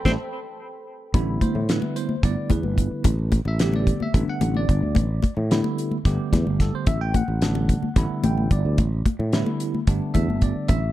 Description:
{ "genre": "electric jazz fusion", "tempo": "220 BPM (eighths)", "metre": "7/8", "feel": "straight", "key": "A dorian", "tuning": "A4 = 440 Hz", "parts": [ { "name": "dark analog pad", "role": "sustained chords", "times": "0.0-1.1 s", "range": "A4 to B5", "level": "-36 LUFS", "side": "right 1 dB", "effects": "chorus" }, { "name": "bell-like tine electric piano", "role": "accompaniment", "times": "0.1-10.9 s", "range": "D3 to G5", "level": "-27 LUFS", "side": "right 2 dB", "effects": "medium stereo tremolo, phaser" }, { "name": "sustaining fretless electric bass", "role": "bass", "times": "0.1-10.9 s", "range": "G1 to A2", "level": "-23 LUFS", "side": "equal", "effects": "none" }, { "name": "damped 70s drum kit", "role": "drums", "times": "0.1-10.8 s", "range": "hi-hat, kick drum, snare drum", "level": "-21 LUFS", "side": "equal", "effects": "none" }, { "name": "congas", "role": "percussion", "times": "0.1-10.9 s", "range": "none", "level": "-28 LUFS", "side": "left 5 dB", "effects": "none" } ], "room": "studio ambience", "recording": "dark, warm production", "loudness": "-20 LUFS", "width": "side -14 dB against mid", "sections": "0.0-1.1 A section; 1.1-10.9 B section", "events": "drum fill 0.0-1.1; band accent 0.0-1.1; tine electric piano fill 0.3-1.1, 8.0-8.8", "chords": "0.0 Am9; 1.1 A9sus4", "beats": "0.05 0.32 0.59 0.87 | 1.14 1.41 1.69 1.96 2.23 2.51 2.78 | 3.05 3.33 3.60 3.87 4.14 4.42 4.69 | 4.96 5.24 5.51 5.78 6.05 6.33 6.60 | 6.87 7.15 7.42 7.69 7.97 8.24 8.51 | 8.79 9.06 9.33 9.61 9.88 10.15 10.42 | 10.70" }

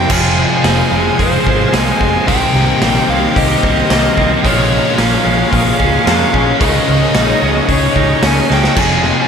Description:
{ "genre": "rock, shoegaze and dream pop", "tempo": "111 BPM", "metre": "4/4", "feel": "straight", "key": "F minor", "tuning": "A4 = 440 Hz", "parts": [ { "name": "nasal lead guitar with a parked wah", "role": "melody", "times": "0.0-9.3 s", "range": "C5 to Ab5", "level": "-18 LUFS", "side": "equal", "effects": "overdrive, analog delay" }, { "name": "analog string pad", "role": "sustained chords", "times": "0.0-9.3 s", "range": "G4 to Db6", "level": "-22 LUFS", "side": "equal", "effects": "ensemble chorus" }, { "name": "direct-recorded clean electric guitar", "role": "arpeggios", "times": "0.0-9.3 s", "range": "Eb3 to Ab4", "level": "-22 LUFS", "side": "left 7 dB", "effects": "wide subtle chorus, analog delay" }, { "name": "crunchy overdriven guitar", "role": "riff", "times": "0.0-9.3 s", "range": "F2 to Ab4", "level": "-19 LUFS", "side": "right 8 dB", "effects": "reverse reverb" }, { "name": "thick fuzz guitar", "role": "riff", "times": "0.0-9.3 s", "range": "F2 to Ab4", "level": "-20 LUFS", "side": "left 7 dB", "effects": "distortion, ensemble chorus" }, { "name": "fingered electric bass", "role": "bass", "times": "0.0-9.1 s", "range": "F1 to F2", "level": "-18 LUFS", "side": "equal", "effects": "none" }, { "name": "biting overdriven guitar", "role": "riff", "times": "0.1-9.3 s", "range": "Bb2 to G4", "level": "-19 LUFS", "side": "left 1 dB", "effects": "none" }, { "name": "raw garage drum kit", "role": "drums", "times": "0.1-9.1 s", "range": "crash cymbal, hi-hat, kick drum, snare drum", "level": "-16 LUFS", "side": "right 1 dB", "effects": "none" } ], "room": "wet church reverb, RT60 3.3 s", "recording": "dreamy mix soaked in reverb", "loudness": "-10 LUFS", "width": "side -7 dB against mid", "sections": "0.1-9.3 A section", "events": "drum fill 8.5", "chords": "0.1 Fm; 2.3 Cm7; 4.4 Bbm7; 6.6 Dbsus2; 8.8 Fm", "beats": "| 0.10 0.65 1.19 1.73 | 2.27 2.82 3.36 3.90 | 4.44 4.98 5.53 6.07 | 6.61 7.15 7.69 8.23 | 8.77" }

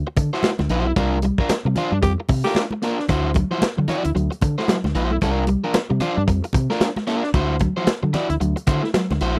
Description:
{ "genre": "funk", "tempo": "113 BPM", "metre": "4/4", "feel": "swing 60% on 16ths", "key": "unclear", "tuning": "A4 = 440 Hz", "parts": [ { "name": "fingered electric bass", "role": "bass", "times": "0.0-9.4 s", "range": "Bb1 to D3", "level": "-24 LUFS", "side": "equal", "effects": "none" }, { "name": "crunchy overdriven guitar", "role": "accompaniment", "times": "0.1-9.4 s", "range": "D4 to D5", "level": "-26 LUFS", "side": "equal", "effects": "none" }, { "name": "tight funk drum kit", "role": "drums", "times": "0.2-9.4 s", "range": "hi-hat, kick drum, snare drum", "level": "-25 LUFS", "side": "equal", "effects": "none" }, { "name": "congas", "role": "percussion", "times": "0.2-9.2 s", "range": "none", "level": "-29 LUFS", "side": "equal", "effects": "none" }, { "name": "mellow electric guitar", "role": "riff", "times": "1.1-9.4 s", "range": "F3 to Bb3", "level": "-28 LUFS", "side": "equal", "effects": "none" }, { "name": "growling tenor saxophone", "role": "second line", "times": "2.0-2.6 s", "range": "G4", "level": "-24 LUFS", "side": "equal", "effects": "none" } ], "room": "little or no reverb", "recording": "dry, close 1970s-style studio recording", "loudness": "-21 LUFS", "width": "mono", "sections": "0.0-9.4 A section", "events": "break 0.0-1.0; band accent 1.0-3.1", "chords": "0.0 D9; 1.0 C9sus4; 3.1 D9; 5.2 C9sus4; 7.3 D9", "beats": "0.43 | 0.96 1.49 2.02 2.56 | 3.09 3.62 4.15 4.68 | 5.21 5.75 6.28 6.81 | 7.34 7.88 8.41 8.94" }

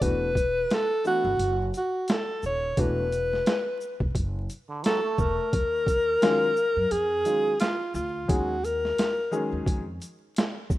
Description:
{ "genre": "hip hop, jazz-hop", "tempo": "87 BPM", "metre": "4/4", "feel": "swing 57% on 16ths", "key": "unclear", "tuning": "A4 = 440 Hz", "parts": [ { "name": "warm alto saxophone", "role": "melody", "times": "0.0-9.7 s", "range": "E#4 to C#5", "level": "-25 LUFS", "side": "equal", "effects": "none" }, { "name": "clear upright piano", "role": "accompaniment", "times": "0.0-9.8 s", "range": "D#3 to G#4", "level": "-31 LUFS", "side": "left 2 dB", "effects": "none" }, { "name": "upright bass", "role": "bass", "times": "0.0-10.8 s", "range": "D#1 to F#2", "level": "-32 LUFS", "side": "equal", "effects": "none" }, { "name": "boom bap sampler-style drum kit", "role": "drums", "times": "0.0-10.8 s", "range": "hi-hat, kick drum, shaker, snare drum", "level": "-27 LUFS", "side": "equal", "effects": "overdrive" }, { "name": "trombone with metal mute", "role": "second line", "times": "4.7-5.5 s", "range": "D3 to A3", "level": "-33 LUFS", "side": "right 4 dB", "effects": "none" } ], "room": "light reverb", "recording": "rough home demo mix, vinyl crackle", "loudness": "-23 LUFS", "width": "side -15 dB against mid", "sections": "0.0-5.5 A section; 5.5-10.8 B section", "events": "none", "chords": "0.0 E9sus4; 5.5 D#m11", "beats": "| 0.02 0.71 1.40 2.08 | 2.77 3.46 4.15 4.84 | 5.53 6.22 6.91 7.60 | 8.29 8.98 9.67 10.36" }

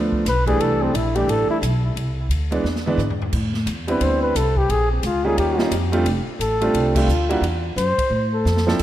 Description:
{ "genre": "jazz, small-group swing and bop", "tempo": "176 BPM", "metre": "4/4", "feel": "swing 62% on 8ths", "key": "unclear", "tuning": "A4 = 440 Hz", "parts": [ { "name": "clear baby grand piano", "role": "accompaniment", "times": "0.0-8.8 s", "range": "E3 to A4", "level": "-22 LUFS", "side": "right 2 dB", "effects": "none" }, { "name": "upright bass", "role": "bass", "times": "0.0-8.8 s", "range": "F1 to A2", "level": "-22 LUFS", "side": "equal", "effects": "none" }, { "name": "swinging big-band drum kit", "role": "drums", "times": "0.1-8.8 s", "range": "crash cymbal, hi-hat, kick drum, ride cymbal, snare drum, toms", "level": "-28 LUFS", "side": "equal", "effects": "none" }, { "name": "mellow flugelhorn", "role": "melody", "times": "0.3-1.6, 3.9-8.8 s", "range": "C4 to C5", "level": "-22 LUFS", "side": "left 1 dB", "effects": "ping-pong delay" } ], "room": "moderate lush hall reverb, RT60 1.9 s, small room reverb", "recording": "dreamy mix soaked in reverb", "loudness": "-18 LUFS", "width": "side -12 dB against mid", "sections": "0.0-3.3 A section; 3.3-8.8 B section", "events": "drum fill 2.6-3.3, 8.5-8.8; band accent 6.9", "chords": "0.0 G9; 0.6 C6; 2.6 E7; 3.3 Am11; 4.7 Bbm; 5.4 Eb9; 6.1 F6; 7.4 Esus2; 8.1 Am", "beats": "0.25 | 0.59 0.93 1.28 1.62 | 1.96 2.30 2.64 2.99 | 3.33 3.67 4.01 4.35 | 4.70 5.04 5.38 5.72 | 6.06 6.40 6.75 7.09 | 7.43 7.77 8.11 8.46 | 8.80" }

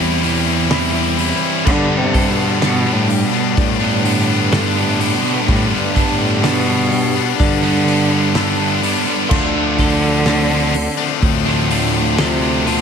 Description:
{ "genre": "post-rock", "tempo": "63 BPM", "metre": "4/4", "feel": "straight", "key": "G mixolydian", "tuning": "A4 = 442 Hz", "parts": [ { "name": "warm cello", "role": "melody", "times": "0.0-12.8 s", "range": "G2 to D3", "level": "-20 LUFS", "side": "equal", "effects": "digital delay" }, { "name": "pedal steel guitar", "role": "sustained chords", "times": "0.0-12.8 s", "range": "A4 to C6", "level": "-32 LUFS", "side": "right 1 dB", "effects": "none" }, { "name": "twelve-string electric guitar", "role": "arpeggios", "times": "0.0-12.8 s", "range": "E2 to A4", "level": "-26 LUFS", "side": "equal", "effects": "phaser, digital delay" }, { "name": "sludgy distorted guitar", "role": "riff", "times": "0.0-12.8 s", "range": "G2 to E4", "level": "-21 LUFS", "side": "right 14 dB", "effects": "overdrive" }, { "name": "tight distorted guitar", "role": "riff", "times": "0.0-12.8 s", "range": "G2 to E4", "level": "-20 LUFS", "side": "left 14 dB", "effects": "distortion" }, { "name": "growling fingered electric bass", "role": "bass", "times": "0.0-12.8 s", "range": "D2 to G2", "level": "-21 LUFS", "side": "equal", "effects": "overdrive" }, { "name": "loose indie drum kit", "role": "drums", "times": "0.2-12.8 s", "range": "crash cymbal, hi-hat, kick drum, snare drum", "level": "-21 LUFS", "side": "equal", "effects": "none" } ], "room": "light reverb, small room ambience", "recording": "none", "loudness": "-13 LUFS", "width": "side -7 dB against mid", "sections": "0.0-12.8 A section", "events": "none", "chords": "0.0 Cmaj7/E; 1.7 Gadd9; 9.3 Dm7", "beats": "0.71 | 1.66 2.62 3.57 4.53 | 5.48 6.44 7.39 8.35 | 9.31 10.26 11.22 12.18" }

